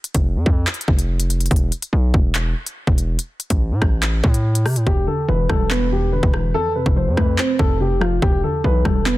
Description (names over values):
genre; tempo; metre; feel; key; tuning
hip hop, drill; 143 BPM; 4/4; half-time; E phrygian; A4 = 440 Hz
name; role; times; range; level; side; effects
drill drum kit; drums; 0.0-9.2 s; handclaps, hi-hat, kick drum, rim click; -19 LUFS; equal; none
distorted 808-style bass; bass; 0.1-9.2 s; E1 to C3; -19 LUFS; equal; distortion
dark grand piano; melody; 4.9-9.2 s; F4 to C5; -22 LUFS; left 2 dB; low-pass filter, tape echo
warbly dusty pluck; accompaniment; 4.9-9.2 s; E2 to C4; -23 LUFS; equal; chorus, low-pass filter
room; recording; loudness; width
little or no reverb; dense, heavily limited modern master; -16 LUFS; side -17 dB against mid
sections
0.0-9.2 A section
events
break 0.0-4.9; hi-hats muted 4.9-9.2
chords
0.0 N.C.; 1.5 E5; 3.2 N.C.; 4.9 Em7; 6.5 F; 8.2 Em7